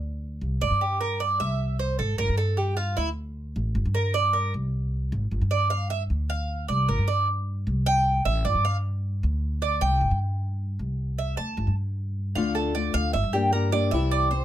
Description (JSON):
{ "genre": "latin", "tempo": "153 BPM", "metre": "4/4", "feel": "straight", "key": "unclear", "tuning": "A4 = 439 Hz", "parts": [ { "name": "upright bass", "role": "bass", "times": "0.0-14.4 s", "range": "G1 to G2", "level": "-26 LUFS", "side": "equal", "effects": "none" }, { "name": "Cuban tres", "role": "arpeggios", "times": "0.6-14.4 s", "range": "E4 to A5", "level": "-25 LUFS", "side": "right 2 dB", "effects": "none" }, { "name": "flamenco guitar", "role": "accompaniment", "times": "12.4-14.4 s", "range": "C3 to G4", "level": "-27 LUFS", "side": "left 5 dB", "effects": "none" } ], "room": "little or no reverb", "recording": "close, detailed microphones", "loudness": "-23 LUFS", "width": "side -12 dB against mid", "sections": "0.0-14.4 A section", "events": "Cuban tres solo 0.0-14.4", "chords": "0.0 Csus2; 0.6 Gm; 1.4 C; 2.2 Gm9; 3.0 D5; 3.8 Gm; 4.5 G#; 5.3 G5; 6.1 Dm; 6.9 Gm; 7.7 C5; 8.5 G5; 9.2 Csus2; 10.0 N.C.; 10.8 C69; 11.6 Gsus2; 12.4 Dm; 13.1 Gm; 13.9 C", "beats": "0.23 0.62 1.01 | 1.40 1.79 2.19 2.58 | 2.97 3.36 3.75 4.14 | 4.54 4.93 5.32 5.71 | 6.10 6.49 6.89 7.28 | 7.67 8.06 8.45 8.84 | 9.23 9.62 10.02 10.41 | 10.80 11.19 11.58 11.97 | 12.36 12.75 13.14 13.53 | 13.92 14.31" }